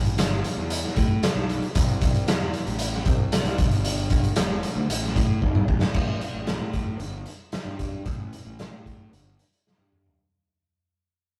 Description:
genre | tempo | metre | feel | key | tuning
quiet-loud alternative rock | 114 BPM | 4/4 | straight | unclear | A4 = 440 Hz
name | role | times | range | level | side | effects
fuzz fingered electric bass | bass | 0.0-10.1 s | E1 to A2 | -31 LUFS | equal | overdrive
raw garage drum kit | drums | 0.0-10.2 s | crash cymbal, hi-hat, kick drum, snare drum, toms | -26 LUFS | equal | none
room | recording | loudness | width
moderate booth ambience, RT60 0.2 s | rough rehearsal-room recording, tube saturation | -24 LUFS | mono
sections
0.0-5.9 A section; 5.9-10.2 B section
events
drum fill 5.4-5.9, 9.6-10.2; fade-out 5.9-10.2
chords
none

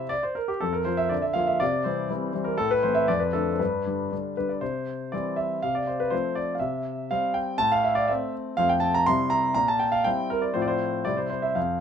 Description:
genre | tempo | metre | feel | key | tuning
classical-period piano sonatina | 121 BPM | 2/4 | straight | C major | A4 = 438 Hz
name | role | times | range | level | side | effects
warm concert grand piano | solo | 0.0-11.8 s | F2 to C6 | -23 LUFS | equal | none
room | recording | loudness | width
light reverb | minimal, uncompressed stereo recording | -23 LUFS | side -8 dB against mid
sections
0.0-4.6 A section; 4.6-11.8 B section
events
none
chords
0.0 C; 0.6 F5; 1.1 Bb/D; 1.6 C; 2.6 Am; 3.1 Dm/F; 3.6 G; 4.6 C; 5.6 F/C; 6.6 C; 7.6 Am; 8.6 F; 9.1 C; 9.6 C7/Bb; 10.5 F/A; 11.1 C

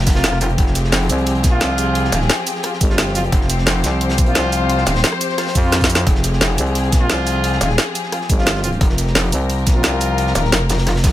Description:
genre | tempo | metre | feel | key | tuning
dark technical drum and bass | 175 BPM | 4/4 | straight | F minor | A4 = 442 Hz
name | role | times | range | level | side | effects
dark studio string section | sustained chords | 0.0-11.1 s | F3 to C5 | -23 LUFS | left 3 dB | sidechain pumping
metallic wobble bass | bass | 0.0-11.1 s | Eb1 to F1 | -18 LUFS | equal | chorus, overdrive
crunchy breakbeat drum kit | drums | 0.1-11.1 s | hi-hat, snare drum | -30 LUFS | equal | none
drum and bass drum kit | drums | 0.1-11.1 s | hi-hat, rim click, shaker, snare drum | -18 LUFS | equal | overdrive, small room ambience
electronic kick drum | drums | 0.1-11.1 s | none | -15 LUFS | equal | overdrive, small room ambience
mellow brass ensemble | stabs | 0.2-10.9 s | F3 to F4 | -24 LUFS | equal | dub echo
growling FM bass | bass | 1.1-10.3 s | G1 to F2 | -19 LUFS | equal | none
room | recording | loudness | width
small room reverb | none | -14 LUFS | side -14 dB against mid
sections
0.0-11.1 A section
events
drum fill 5.7-6.1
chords
0.0 Fmadd9

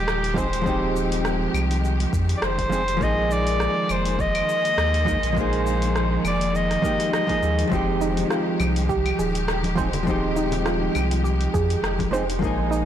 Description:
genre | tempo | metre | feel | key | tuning
sunset chillout | 102 BPM | 4/4 | swing 55% on 16ths | F minor | A4 = 439 Hz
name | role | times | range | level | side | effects
warm soprano saxophone | melody | 0.0-7.7 s | G4 to Eb5 | -25 LUFS | equal | digital delay
hollow-body jazz guitar | accompaniment | 0.0-12.9 s | F3 to Bb4 | -25 LUFS | equal | auto-pan, digital delay
rich studio string section | sustained chords | 0.0-12.9 s | Bb2 to G4 | -31 LUFS | equal | none
warm sub bass | bass | 0.0-12.9 s | Eb1 to F2 | -25 LUFS | equal | tube saturation
deep house drum kit | drums | 0.1-12.9 s | cabasa, claves, hi-hat, rim click | -31 LUFS | equal | soft clipping on snare
electronic kick drum | drums | 0.4-12.6 s | none | -29 LUFS | equal | none
congas | percussion | 7.7-12.6 s | none | -32 LUFS | left 4 dB | none
soft round pluck | arpeggios | 8.0-12.9 s | Eb4 to C5 | -28 LUFS | right 4 dB | chorus, digital delay
room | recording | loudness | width
moderate lush hall reverb, RT60 2.3 s | blown-out, overdriven recording, overdrive | -20 LUFS | side -10 dB against mid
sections
0.0-12.9 A section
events
none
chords
0.0 Fm9; 3.0 Bb7sus4; 7.7 Fm9

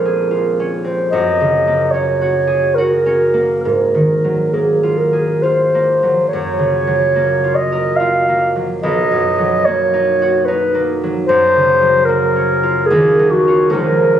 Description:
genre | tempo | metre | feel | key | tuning
classical, impressionist duo for clarinet and harp | 67-75 BPM | 3/4 | rubato | unclear | A4 = 439 Hz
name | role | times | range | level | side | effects
dark clarinet | melody | 0.0-14.2 s | Gb4 to F5 | -14 LUFS | right 1 dB | none
concert harp | accompaniment | 0.0-14.2 s | Bb1 to Bb4 | -17 LUFS | equal | none
room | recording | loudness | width
moderate concert hall reverb, RT60 1.9 s | recorded on a phone in the room, studio reverb | -12 LUFS | side -9 dB against mid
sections
0.0-14.2 A section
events
none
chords
0.0 Bbm9; 1.1 Gb69; 3.6 Ab13; 6.3 Gbmaj7; 8.8 Cbmaj7; 11.3 Gbmaj7#11; 12.9 Ebm11

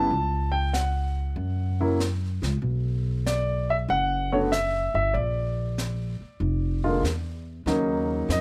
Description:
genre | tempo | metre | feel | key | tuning
jazz piano trio | 95 BPM | 4/4 | swing 68% on 8ths | unclear | A4 = 442 Hz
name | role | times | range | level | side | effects
warm concert grand piano | melody | 0.0-8.4 s | C#3 to A5 | -28 LUFS | equal | none
upright bass | bass | 0.0-8.4 s | E#1 to F#2 | -29 LUFS | equal | none
jazz brush drum kit | drums | 0.1-8.4 s | brushed snare drum, hi-hat, snare drum | -38 LUFS | equal | none
room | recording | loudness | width
light reverb | none | -26 LUFS | mono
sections
0.0-7.7 A section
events
none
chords
0.1 F#m/C#; 1.4 F#5; 2.6 Bm; 5.1 A#; 7.7 Ebm7

